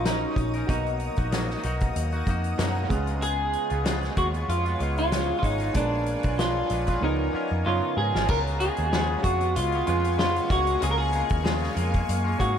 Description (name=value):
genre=indie pop, bedroom pop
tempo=95 BPM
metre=4/4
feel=swing 55% on 16ths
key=unclear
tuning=A4 = 442 Hz
part: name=electric guitar through a small old amp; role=melody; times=0.0-12.6 s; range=D4 to A#4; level=-27 LUFS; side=right 1 dB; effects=wide subtle chorus, dub echo
part: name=direct-recorded clean electric guitar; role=accompaniment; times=0.0-12.6 s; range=A#2 to B4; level=-32 LUFS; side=left 3 dB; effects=wide subtle chorus, warbly pitch drift
part: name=warm upright piano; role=accompaniment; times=0.0-8.3 s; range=E#3 to A#4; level=-36 LUFS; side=right 6 dB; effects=dub echo
part: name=shimmering ambient pad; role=sustained chords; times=0.0-12.6 s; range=A#3 to D#6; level=-35 LUFS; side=right 1 dB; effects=chorus, built-in reverb, phaser
part: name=vintage muted picked electric bass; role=bass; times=0.0-12.6 s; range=G#1 to G#2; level=-28 LUFS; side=equal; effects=none
part: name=loose indie drum kit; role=drums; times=0.1-12.6 s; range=crash cymbal, hi-hat, kick drum, snare drum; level=-29 LUFS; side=equal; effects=dub echo
room=light reverb, studio ambience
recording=echo-heavy mix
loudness=-23 LUFS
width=side -8 dB against mid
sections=0.0-8.3 A section; 8.3-12.6 B section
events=drum fill 7.0-8.3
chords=0.0 F#6; 0.7 Bmaj7; 2.9 C#7; 5.8 A#7b9; 7.0 C#13; 8.3 C#7; 10.5 A#m7/C#